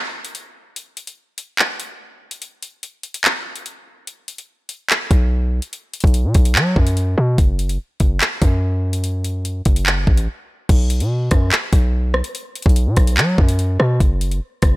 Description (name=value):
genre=hip hop, drill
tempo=145 BPM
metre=4/4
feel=half-time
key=unclear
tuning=A4 = 441 Hz
part: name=drill drum kit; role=drums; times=0.2-14.7 s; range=crash cymbal, handclaps, hi-hat, kick drum, rim click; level=-17 LUFS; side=equal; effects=none
part: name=hard-hitting 808-style bass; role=bass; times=5.1-14.8 s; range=F#1 to F#3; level=-17 LUFS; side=equal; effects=none
room=digital ambience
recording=none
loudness=-15 LUFS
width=side -20 dB against mid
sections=0.0-10.7 A section; 10.7-14.8 B section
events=break 0.0-4.1, 4.1-4.9, 10.3-10.7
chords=none